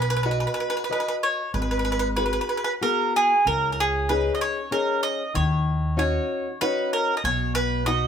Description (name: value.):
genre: italian folk, Italian serenade.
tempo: 95 BPM.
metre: 3/4.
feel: rubato.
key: unclear.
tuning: A4 = 435 Hz.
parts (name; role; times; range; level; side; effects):
bowl-back mandolin; melody; 0.0-8.1 s; G#4 to D#5; -24 LUFS; right 1 dB; none.
nylon-string guitar; accompaniment; 0.0-8.1 s; B2 to D#5; -28 LUFS; left 3 dB; none.
upright bass; bass; 0.0-8.1 s; G#1 to D#2; -26 LUFS; equal; none.
room: moderate stone room reverb, RT60 1.1 s.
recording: band playing live in one room.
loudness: -21 LUFS.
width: side -8 dB against mid.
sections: 0.0-1.5 A section; 1.5-8.1 B section.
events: none.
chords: 0.0 B; 1.5 G#m7; 3.5 C#sus2; 5.4 D#m7; 7.2 B.